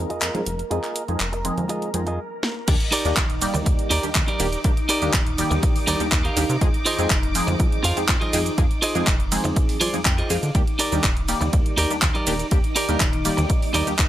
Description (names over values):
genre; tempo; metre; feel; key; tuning
filtered disco house; 122 BPM; 4/4; straight; Eb major; A4 = 440 Hz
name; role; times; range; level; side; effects
funky polysynth comp; accompaniment; 0.0-13.9 s; Eb3 to D5; -27 LUFS; equal; chorus, phaser, sidechain pumping, low-pass filter
string machine, full ensemble; sustained chords; 0.0-14.1 s; Eb4 to D6; -30 LUFS; equal; ensemble chorus, sidechain pumping, low-pass filter
plucky analog bass; bass; 0.0-14.1 s; Eb1 to D3; -26 LUFS; equal; sidechain pumping, low-pass filter
clean electric guitar; riff; 0.1-14.0 s; Eb4 to G5; -25 LUFS; right 2 dB; sidechain pumping, low-pass filter
house drum kit; drums; 0.1-14.1 s; crash cymbal, handclaps, hi-hat, ride cymbal, shaker, snare drum; -25 LUFS; right 1 dB; sidechain pumping on hats, sidechain pumping on cymbals, sidechain pumping on perc
tambourine and congas; percussion; 0.1-14.1 s; none; -35 LUFS; right 2 dB; none
electronic kick drum; drums; 2.7-14.1 s; none; -22 LUFS; equal; none
room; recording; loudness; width
little or no reverb; none; -19 LUFS; side -13 dB against mid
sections
0.0-2.7 A section; 2.7-14.1 B section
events
filter sweep 0.0-2.7; drum fill 2.4; drop 2.7-14.1; clean electric guitar fill 9.8-10.5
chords
0.0 Fm7; 2.7 Ebmaj7; 6.6 Fm7; 10.5 Ebmaj7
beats
0.22 | 0.71 1.20 1.70 2.19 | 2.68 3.17 3.66 4.16 | 4.65 5.14 5.63 6.12 | 6.61 7.11 7.60 8.09 | 8.58 9.07 9.56 10.06 | 10.55 11.04 11.53 12.02 | 12.52 13.01 13.50 13.99